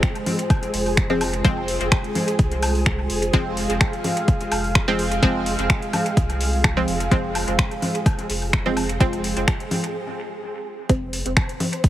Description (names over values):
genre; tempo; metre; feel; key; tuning
dub techno; 127 BPM; 4/4; swing 53% on 16ths; F minor; A4 = 440 Hz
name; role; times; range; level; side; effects
dark analog pad; sustained chords; 0.0-9.9 s; Ab3 to F5; -28 LUFS; right 1 dB; chorus, sidechain pumping
deep house drum kit; drums; 0.0-11.9 s; finger snaps, hi-hat; -26 LUFS; equal; overdrive, dub echo
electronic kick drum; drums; 0.0-11.9 s; none; -20 LUFS; equal; overdrive
flickering grainy texture; texture; 0.0-11.9 s; Ab4 to C5; -31 LUFS; right 2 dB; built-in reverb, sidechain pumping
congas and woodblock; percussion; 0.3-11.7 s; none; -29 LUFS; left 1 dB; overdrive, sidechain pumping on perc, dub echo
pure sine sub bass; bass; 0.7-11.3 s; F1 to C2; -27 LUFS; equal; tube saturation, sidechain pumping
filtered dub chord stab; stabs; 1.1-11.2 s; F3 to C4; -26 LUFS; equal; chorus, phaser, sidechain pumping, dub echo
room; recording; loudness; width
light reverb, digital ambience; heavily compressed radio sound; -19 LUFS; side -13 dB against mid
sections
0.0-10.9 A section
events
break 9.9-10.9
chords
0.0 Fm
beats
0.03 0.50 0.97 | 1.45 1.92 2.39 2.86 | 3.33 3.81 4.28 4.75 | 5.22 5.70 6.17 6.64 | 7.12 7.59 8.06 8.53 | 9.01 9.48 9.95 10.42 | 10.89 11.37 11.84